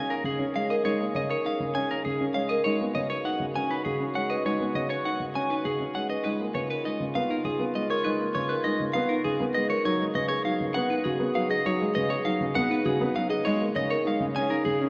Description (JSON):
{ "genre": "classical, minimalist pattern music", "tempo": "100 BPM", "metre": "3/4", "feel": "straight", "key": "Db mixolydian", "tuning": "A4 = 440 Hz", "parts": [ { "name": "electric guitar at the edge of break-up", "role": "melody", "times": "0.0-14.8 s", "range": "Ab4 to Ab5", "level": "-32 LUFS", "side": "equal", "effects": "none" }, { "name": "clear clarinet", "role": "second line", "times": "0.0-14.9 s", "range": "F4 to Ab4", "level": "-38 LUFS", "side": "equal", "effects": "none" }, { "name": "dark grand piano", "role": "accompaniment", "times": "0.0-14.9 s", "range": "Db3 to Db4", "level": "-32 LUFS", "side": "equal", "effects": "none" }, { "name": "buzzing marimba with soft mallets", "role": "arpeggios", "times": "0.0-14.8 s", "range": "Eb4 to Db5", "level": "-32 LUFS", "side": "equal", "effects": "none" } ], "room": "wet cathedral reverb, RT60 7.2 s", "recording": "in a vast, echoing space", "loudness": "-27 LUFS", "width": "mono", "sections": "0.0-14.9 A section", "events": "none", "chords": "0.0 Bbm7; 2.6 Abm7; 6.2 Db9; 9.8 Cb69; 13.4 Bbm7", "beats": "0.25 | 0.85 1.45 2.05 | 2.65 3.25 3.85 | 4.45 5.05 5.65 | 6.25 6.85 7.45 | 8.05 8.65 9.25 | 9.85 10.45 11.05 | 11.65 12.25 12.85 | 13.45 14.05 14.65" }